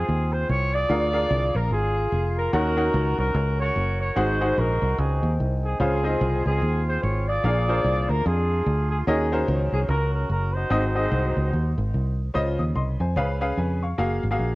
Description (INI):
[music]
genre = uptempo gospel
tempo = 147 BPM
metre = 4/4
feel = swing 60% on 8ths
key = Db major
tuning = A4 = 440 Hz
[part]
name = dark horn section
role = melody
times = 0.0-11.9 s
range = C4 to D5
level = -26 LUFS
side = equal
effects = cassette tape, analog delay
[part]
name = clear baby grand piano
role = accompaniment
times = 0.0-14.6 s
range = Ab2 to Eb6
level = -26 LUFS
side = left 1 dB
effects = cassette tape, plate reverb
[part]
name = fingered electric bass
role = bass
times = 0.0-14.6 s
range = F1 to F2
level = -24 LUFS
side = equal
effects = none
[sound]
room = light reverb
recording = home recording on cassette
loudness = -21 LUFS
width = side -20 dB against mid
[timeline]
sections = 0.0-12.3 A section; 12.3-14.6 B section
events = none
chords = 0.0 Dbmaj7; 0.9 Bb7; 2.5 Ebm7; 4.2 Ab7; 5.8 Dbmaj7; 7.4 Bb7; 9.1 Ebm7; 10.7 Ab7; 12.3 Dbmaj9; 13.2 Db7; 14.0 Gbmaj9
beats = 0.08 0.49 | 0.90 1.31 1.72 2.13 | 2.54 2.94 3.35 3.76 | 4.17 4.58 4.99 5.40 | 5.81 6.21 6.62 7.03 | 7.44 7.85 8.26 8.67 | 9.08 9.48 9.89 10.30 | 10.71 11.12 11.53 11.94 | 12.35 12.76 13.16 13.57 | 13.98 14.39